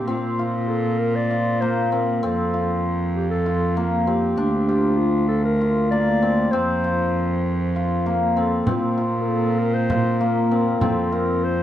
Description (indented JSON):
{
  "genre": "contemporary instrumental, chamber music in an uneven meter",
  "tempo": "196 BPM (eighths)",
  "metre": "7/8",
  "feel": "straight",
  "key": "Bb major",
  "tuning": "A4 = 438 Hz",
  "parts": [
    { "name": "dark clarinet", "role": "melody", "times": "0.0-11.6 s", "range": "F4 to D5", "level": "-26 LUFS", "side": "left 1 dB", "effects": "none" },
    { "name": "cimbalom", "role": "arpeggios", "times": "0.0-11.6 s", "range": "Bb3 to F4", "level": "-22 LUFS", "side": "left 2 dB", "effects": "none" },
    { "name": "rich cello", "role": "bass", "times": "0.0-11.6 s", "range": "D2 to Bb2", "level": "-23 LUFS", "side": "right 2 dB", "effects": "none" },
    { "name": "frame drum", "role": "percussion", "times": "8.7-11.1 s", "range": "none", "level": "-25 LUFS", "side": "right 2 dB", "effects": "none" }
  ],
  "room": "moderate studio reverb, RT60 0.5 s",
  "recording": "dark, warm production",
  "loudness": "-19 LUFS",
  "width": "side -11 dB against mid",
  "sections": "0.1-11.6 A section",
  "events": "none",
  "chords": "0.1 Bbsus2; 2.2 F; 4.4 Dm; 6.5 F5; 8.7 Bbsus2; 10.8 F5",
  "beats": "| 0.08 0.39 0.69 1.00 1.30 1.61 1.92 | 2.23 2.53 2.84 3.15 3.45 3.76 4.07 | 4.37 4.68 4.99 5.29 5.60 5.91 6.21 | 6.52 6.83 7.13 7.44 7.75 8.05 8.36 | 8.67 8.97 9.28 9.59 9.89 10.20 10.51 | 10.81 11.12 11.43"
}